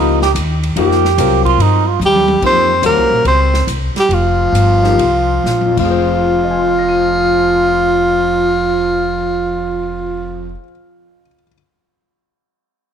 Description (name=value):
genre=modal jazz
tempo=123-145 BPM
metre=4/4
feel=swing 66% on 8ths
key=F minor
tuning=A4 = 440 Hz
part: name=trombone with metal mute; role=second line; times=0.0-10.5 s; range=F3 to G4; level=-19 LUFS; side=right 11 dB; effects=none
part: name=clear concert grand piano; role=accompaniment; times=0.0-11.5 s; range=F2 to Eb7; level=-20 LUFS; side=left 13 dB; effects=none
part: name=upright bass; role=bass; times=0.0-10.5 s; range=F1 to G2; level=-18 LUFS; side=left 1 dB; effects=transformer saturation
part: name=swinging big-band drum kit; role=drums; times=0.2-5.8 s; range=crash cymbal, hi-hat, kick drum, ride cymbal, snare drum, toms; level=-24 LUFS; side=left 2 dB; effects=none
part: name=breathy tenor saxophone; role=melody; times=2.1-10.6 s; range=F4 to C5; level=-13 LUFS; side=equal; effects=slapback echo
room=light reverb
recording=1960s-style stereo with parts hard left and right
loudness=-11 LUFS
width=side -8 dB against mid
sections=0.0-2.4 A section; 2.4-5.9 B section; 5.9-9.8 C section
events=trombone solo 0.0-2.4; drum fill 2.0-2.4, 5.5-5.9; slowing down 2.4-5.9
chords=0.0 F9sus4; 5.7 Fm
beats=0.35 | 0.77 1.18 1.59 2.01 | 2.42 2.83 3.25 3.67 | 4.10 4.54 4.99 5.46 | 5.93 6.42 6.91 7.39 | 7.88 8.37 8.85 9.34